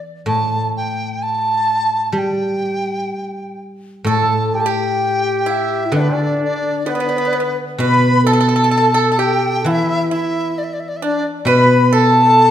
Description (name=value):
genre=chinese traditional, Chinese chamber ensemble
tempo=64 BPM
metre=4/4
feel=rubato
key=G gong mode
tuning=A4 = 440 Hz
part: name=large dizi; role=melody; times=0.0-12.5 s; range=B4 to B5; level=-18 LUFS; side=equal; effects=none
part: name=guzheng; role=accompaniment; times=0.0-12.5 s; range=A2 to G3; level=-19 LUFS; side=equal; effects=none
part: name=breathy mellow low xiao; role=second line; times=4.1-12.5 s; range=D4 to D5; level=-22 LUFS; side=left 4 dB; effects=none
part: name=pipa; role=second line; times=4.1-12.5 s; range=B3 to B4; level=-23 LUFS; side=right 6 dB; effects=none
part: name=trumpet with plunger mute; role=second line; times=4.1-12.5 s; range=B3 to B4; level=-22 LUFS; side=equal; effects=none
room=wet recital hall reverb, RT60 1.7 s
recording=none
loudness=-14 LUFS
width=side -10 dB against mid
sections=0.0-4.1 A section; 4.1-12.5 B section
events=none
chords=none